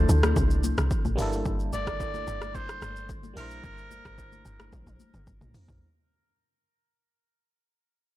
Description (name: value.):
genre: amapiano.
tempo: 110 BPM.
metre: 4/4.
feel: straight.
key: G dorian.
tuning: A4 = 442 Hz.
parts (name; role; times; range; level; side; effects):
barking FM electric piano; accompaniment; 0.0-5.8 s; F3 to C5; -35 LUFS; right 1 dB; chorus, tremolo.
deep log drum bass; bass; 0.0-5.8 s; G1 to D2; -26 LUFS; equal; none.
deep house drum kit; drums; 0.1-5.8 s; hi-hat, kick drum, rim click, shaker, toms; -30 LUFS; equal; none.
congas; percussion; 0.2-5.7 s; none; -38 LUFS; left 8 dB; none.
warm oboe; melody; 1.7-5.0 s; Bb4 to D5; -38 LUFS; right 1 dB; tape echo.
room: little or no reverb.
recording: blown-out, overdriven recording, overdrive.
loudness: -25 LUFS.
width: side -16 dB against mid.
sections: 0.0-5.8 A section.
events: fade-out 0.0-5.8; drum fill 4.7-5.8.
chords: 0.0 Dm9; 1.2 Gm69.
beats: 0.36 0.91 | 1.46 2.00 2.55 3.09 | 3.64 4.18 4.73 5.27.